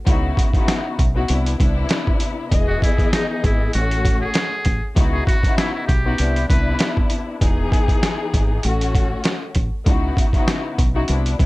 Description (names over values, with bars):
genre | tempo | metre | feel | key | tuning
hip hop, boom-bap hip-hop | 98 BPM | 4/4 | swing 54% on 16ths | unclear | A4 = 441 Hz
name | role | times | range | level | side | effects
warm studio string section | accompaniment | 0.1-11.5 s | A2 to D#5 | -24 LUFS | left 3 dB | cassette tape, high-pass filter, low-pass filter
deep dub fingered electric bass | bass | 0.1-11.5 s | E1 to C#2 | -20 LUFS | equal | none
boom bap sampler-style drum kit | drums | 0.1-11.5 s | hi-hat, kick drum, snare drum | -19 LUFS | equal | none
trumpet with metal mute | melody | 2.7-6.9 s | D#4 to B4 | -26 LUFS | equal | high-pass filter, low-pass filter, analog delay
room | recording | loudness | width
little or no reverb | dark, warm production | -16 LUFS | side -20 dB against mid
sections
0.0-11.5 A section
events
none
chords
0.1 C#m11; 1.3 Cmaj9; 2.5 Emaj7; 3.7 A6; 5.0 C#m11; 6.2 Cmaj9; 7.4 Emaj7; 8.6 A6; 9.9 C#m11